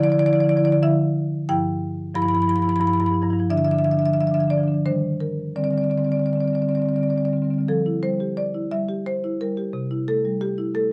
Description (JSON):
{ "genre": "classical, contemporary piece for solo marimba", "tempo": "88 BPM", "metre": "3/4", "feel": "rubato", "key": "D dorian, F major from 7.7 s", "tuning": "A4 = 440 Hz", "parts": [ { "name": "marimba with medium hard mallets", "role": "solo", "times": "0.0-10.9 s", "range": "G2 to B5", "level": "-22 LUFS", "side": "equal", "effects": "none" } ], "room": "light reverb", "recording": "dark, warm production, nothing above 10.5 kHz", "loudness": "-22 LUFS", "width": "mono", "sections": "0.0-7.7 A section; 7.7-10.9 B section", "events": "none", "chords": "0.0 Dmadd9; 1.5 G6; 3.5 Dmadd9; 4.9 Ebmaj7; 5.6 D7sus4; 7.7 Fsus2; 9.7 C6", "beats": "0.16 0.82 | 1.49 2.16 2.83 | 3.50 4.16 4.85 | 5.56 6.27 6.98 | 7.68 8.37 9.06 | 9.74 10.42" }